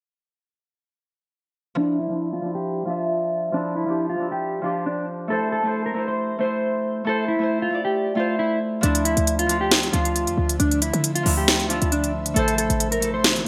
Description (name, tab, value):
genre	hip hop, trap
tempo	136 BPM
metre	4/4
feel	half-time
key	D minor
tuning	A4 = 438 Hz
part	mellow electric guitar	melody	1.8-13.4 s	D4 to C5	-27 LUFS	equal	lush chorus, low-pass filter
part	Celtic harp	accompaniment	1.8-13.5 s	F3 to E5	-28 LUFS	equal	low-pass filter
part	ethereal airy pad	sustained chords	9.9-13.5 s	C3 to E5	-35 LUFS	equal	ensemble chorus, built-in reverb
part	short 808-style bass	bass	8.8-13.4 s	A1 to D3	-27 LUFS	equal	none
part	trap drum kit	drums	8.8-13.5 s	hi-hat, snare drum	-24 LUFS	equal	gated reverb
room	moderate plate reverb, RT60 1.4 s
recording	bright 1980s-style digital production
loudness	-23 LUFS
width	mono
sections	1.8-8.8 A section; 8.8-13.5 B section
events	filter sweep 1.8-8.8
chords	1.8 Dmadd9; 5.3 Am; 8.8 Dmadd9; 12.4 Am